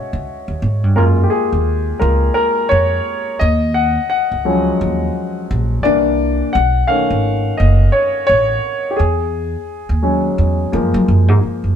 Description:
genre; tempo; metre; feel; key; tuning
R&B, neo-soul; 86 BPM; 4/4; swing 59% on 16ths; F# major; A4 = 440 Hz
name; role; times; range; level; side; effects
warm grand piano; accompaniment; 0.0-11.8 s; D#3 to F#5; -16 LUFS; left 2 dB; none
upright bass; bass; 0.1-11.7 s; F#1 to F#3; -16 LUFS; right 1 dB; none
room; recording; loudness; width
light reverb; band playing live in one room; -13 LUFS; side -8 dB against mid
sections
0.0-11.8 A section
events
grand piano solo 0.0-11.8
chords
0.0 E69; 0.9 F#maj9 (rootless); 3.4 D#m11; 5.8 C9; 6.5 B9 (rootless); 9.0 E69; 10.7 F#maj7

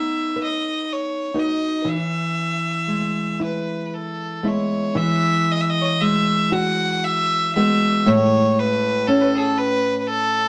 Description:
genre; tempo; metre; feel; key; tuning
celtic folk, Celtic slow air; 39 BPM (dotted quarters); 6/8; rubato; E major; A4 = 441 Hz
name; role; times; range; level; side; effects
clear fiddle; melody; 0.0-10.5 s; G#4 to F#5; -24 LUFS; equal; none
nylon-string guitar; accompaniment; 0.0-10.5 s; A2 to B4; -23 LUFS; equal; none
room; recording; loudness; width
wet studio reverb, RT60 0.5 s; none; -21 LUFS; mono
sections
0.0-5.0 A section; 5.0-10.5 A section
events
none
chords
0.0 B; 1.9 E; 5.0 Eadd9; 8.1 Amaj7

